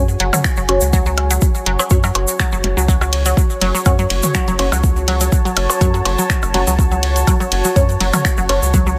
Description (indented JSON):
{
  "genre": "minimal techno",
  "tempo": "123 BPM",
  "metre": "4/4",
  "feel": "swing 53% on 16ths",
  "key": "F# minor",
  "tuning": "A4 = 440 Hz",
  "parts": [
    { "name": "filtered dub chord stab", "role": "stabs", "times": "0.0-8.6 s", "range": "C#4 to C#5", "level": "-25 LUFS", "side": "equal", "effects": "phaser, cassette tape, delay" },
    { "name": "rubbery square bass", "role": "bass", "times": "0.0-9.0 s", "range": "F#1 to F#2", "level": "-21 LUFS", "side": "equal", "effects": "sidechain pumping" },
    { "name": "deep dark ambient pad", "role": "texture", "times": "0.0-9.0 s", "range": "F#4 to A5", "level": "-25 LUFS", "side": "equal", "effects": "chorus, built-in reverb, sidechain pumping" },
    { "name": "egg shaker", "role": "percussion", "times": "0.1-9.0 s", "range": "none", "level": "-26 LUFS", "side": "equal", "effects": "none" },
    { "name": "resonant blip pluck", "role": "riff", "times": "0.2-8.9 s", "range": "F#3", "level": "-25 LUFS", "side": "equal", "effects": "phaser, vintage 12-bit sampler grit, sidechain pumping, delay" },
    { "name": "garage drum kit", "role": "drums", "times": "0.2-8.6 s", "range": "finger snaps, hi-hat, ride cymbal", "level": "-24 LUFS", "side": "equal", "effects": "none" },
    { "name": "electronic toms and percussion blips", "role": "percussion", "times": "0.3-8.6 s", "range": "none", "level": "-24 LUFS", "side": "equal", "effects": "overdrive, delay" },
    { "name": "electronic kick drum", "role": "drums", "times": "0.4-8.8 s", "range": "none", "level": "-18 LUFS", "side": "equal", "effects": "overdrive" }
  ],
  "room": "light reverb",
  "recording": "none",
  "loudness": "-16 LUFS",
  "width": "mono",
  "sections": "0.0-9.0 A section",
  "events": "none",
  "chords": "0.0 F#5"
}